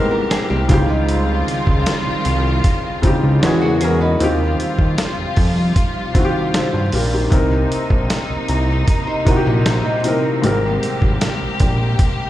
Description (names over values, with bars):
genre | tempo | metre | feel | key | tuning
contemporary R&B | 77 BPM | 4/4 | straight | C phrygian | A4 = 440 Hz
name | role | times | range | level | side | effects
felt-muted upright piano | accompaniment | 0.0-12.3 s | Ab2 to C5 | -20 LUFS | left 1 dB | none
warm studio string section | sustained chords | 0.0-12.3 s | C3 to G4 | -23 LUFS | equal | none
nylon-string guitar | arpeggios | 0.0-4.4, 9.1-10.4 s | G3 to C5 | -26 LUFS | right 2 dB | tape echo
dusty soul sampler-style drum kit | drums | 0.3-12.2 s | hi-hat, kick drum, snare drum | -19 LUFS | equal | none
fat analog bass | bass | 0.5-12.0 s | Ab1 to G2 | -20 LUFS | equal | none
room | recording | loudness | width
moderate concert hall reverb, RT60 2.5 s | played on a big sound system in a bare room, stone room reverb | -15 LUFS | side -14 dB against mid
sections
0.0-12.3 A section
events
none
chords
0.0 Abmaj9; 0.7 Dbmaj9#11; 3.4 E69; 4.2 Eb69; 7.3 Cm7; 10.4 Abmaj9